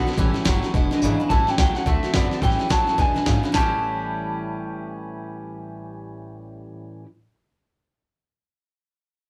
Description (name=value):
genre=rockabilly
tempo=214 BPM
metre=4/4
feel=swing 61% on 8ths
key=A mixolydian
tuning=A4 = 440 Hz
part: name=picked steel-string acoustic guitar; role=accompaniment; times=0.0-7.1 s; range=E2 to F#4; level=-30 LUFS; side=equal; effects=none
part: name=twangy electric guitar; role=riff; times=0.0-7.1 s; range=E2 to G4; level=-33 LUFS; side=equal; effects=none
part: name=upright bass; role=bass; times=0.0-6.6 s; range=E1 to A2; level=-31 LUFS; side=equal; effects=none
part: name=dusty soul sampler-style drum kit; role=drums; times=0.1-3.6 s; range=handclaps, hi-hat, kick drum, snare drum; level=-25 LUFS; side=equal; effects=none
part: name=electric guitar through a small old amp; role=melody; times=1.3-6.6 s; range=D5 to A5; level=-27 LUFS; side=equal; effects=spring reverb, slapback echo
room=moderate small room ambience, RT60 0.5 s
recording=band playing live in one room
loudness=-22 LUFS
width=mono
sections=0.0-1.3 A section; 1.3-3.5 B section; 3.5-5.8 C section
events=kick and snare drop out 1.0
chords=0.2 A7; 0.7 E7; 1.3 A7; 1.9 D7; 2.4 A7; 3.0 E7; 3.5 A7